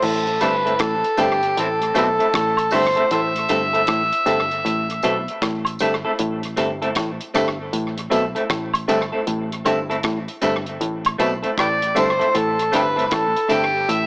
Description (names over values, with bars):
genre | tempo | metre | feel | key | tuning
roots reggae | 78 BPM | 4/4 | swing 64% on 16ths | A minor | A4 = 440 Hz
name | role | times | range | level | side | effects
overdriven harmonica | melody | 0.0-5.4, 11.6-14.1 s | C4 to E5 | -19 LUFS | equal | dub echo
muted clav | riff | 0.0-14.1 s | G2 to B2 | -26 LUFS | left 1 dB | none
vintage muted fingered electric bass | bass | 0.0-14.1 s | G1 to B1 | -30 LUFS | equal | none
damped 70s drum kit | drums | 0.0-14.1 s | crash cymbal, hi-hat, kick drum, rim click | -27 LUFS | equal | tape echo
semi-hollow electric guitar | accompaniment | 0.4-13.6 s | A3 to A4 | -23 LUFS | equal | tremolo, dub echo
tambourine and woodblock | percussion | 0.4-13.7 s | none | -26 LUFS | right 1 dB | none
room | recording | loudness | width
light reverb, studio reverb | echo-heavy mix, small speaker sound | -17 LUFS | side -29 dB against mid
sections
0.0-14.1 A section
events
none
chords
0.0 Am